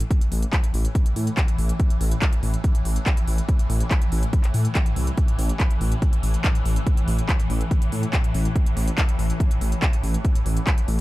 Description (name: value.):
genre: driving peak-time techno.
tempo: 142 BPM.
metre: 4/4.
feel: straight.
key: unclear.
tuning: A4 = 442 Hz.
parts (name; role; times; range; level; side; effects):
dark detuned saw bass; bass; 0.0-11.0 s; A1 to A2; -22 LUFS; equal; sidechain pumping.
swarming drone; drone; 0.0-11.0 s; A2 to E3; -30 LUFS; left 1 dB; built-in reverb, sidechain pumping.
techno drum kit; drums; 0.0-11.0 s; handclaps, hi-hat; -30 LUFS; equal; overdrive.
electronic kick drum; drums; 0.1-10.8 s; none; -20 LUFS; equal; overdrive.
room: digital ambience.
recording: none.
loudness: -19 LUFS.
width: side -18 dB against mid.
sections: 0.0-11.0 A section.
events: none.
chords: 0.0 A5.